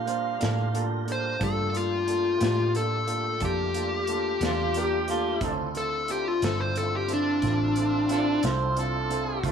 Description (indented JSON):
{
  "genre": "slow blues",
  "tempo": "60 BPM (dotted quarters)",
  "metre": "12/8",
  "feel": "straight",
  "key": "unclear",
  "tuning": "A4 = 439 Hz",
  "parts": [
    { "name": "overdriven harmonica", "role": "second line", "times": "0.0-9.5 s", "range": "A3 to F5", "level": "-30 LUFS", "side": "right 4 dB", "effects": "none" },
    { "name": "tonewheel organ", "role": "sustained chords", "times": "0.0-9.5 s", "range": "G3 to Bb4", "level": "-35 LUFS", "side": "equal", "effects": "slow rotary speaker, chorus vibrato" },
    { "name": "vintage muted fingered electric bass", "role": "bass", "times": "0.0-9.5 s", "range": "G1 to Bb2", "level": "-31 LUFS", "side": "right 1 dB", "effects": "none" },
    { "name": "clear upright piano", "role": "accompaniment", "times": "0.1-9.5 s", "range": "Bb3 to C5", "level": "-32 LUFS", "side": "right 4 dB", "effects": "none" },
    { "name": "vintage drum kit", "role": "drums", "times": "0.1-9.5 s", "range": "hi-hat, kick drum, snare drum", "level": "-34 LUFS", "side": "equal", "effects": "none" },
    { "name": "dark smooth lead guitar", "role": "melody", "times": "1.1-8.4 s", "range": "D4 to C5", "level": "-27 LUFS", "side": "left 3 dB", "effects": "overdrive" }
  ],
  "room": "light reverb",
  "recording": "none",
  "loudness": "-24 LUFS",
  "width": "side -7 dB against mid",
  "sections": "0.0-9.5 A section",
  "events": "none",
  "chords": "0.0 Gm9; 5.4 Dm9"
}